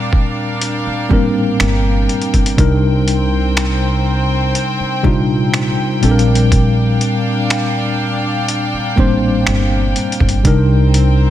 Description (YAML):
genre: contemporary R&B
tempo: 61 BPM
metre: 4/4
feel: straight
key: unclear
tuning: A4 = 442 Hz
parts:
  - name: mellow tine electric piano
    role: accompaniment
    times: 0.0-11.3 s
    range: Bb2 to C5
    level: -16 LUFS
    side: left 1 dB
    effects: medium stereo tremolo
  - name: warm studio string section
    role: sustained chords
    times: 0.0-11.3 s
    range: C4 to G5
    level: -21 LUFS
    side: equal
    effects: sidechain pumping
  - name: dusty soul sampler-style drum kit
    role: drums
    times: 0.1-11.2 s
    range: finger snaps, hi-hat, kick drum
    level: -17 LUFS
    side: equal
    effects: none
  - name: upright bass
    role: bass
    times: 0.9-11.3 s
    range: G1 to C2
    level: -17 LUFS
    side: right 1 dB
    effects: none
room: light reverb, small room reverb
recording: none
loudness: -12 LUFS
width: side -12 dB against mid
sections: 0.0-11.3 A section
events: none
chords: 0.0 Bb6; 2.6 Cm7; 6.0 Bb6; 10.4 Cm7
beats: 0.61 1.60 | 2.58 3.56 4.55 5.53 | 6.52 7.50 8.48 9.47 | 10.45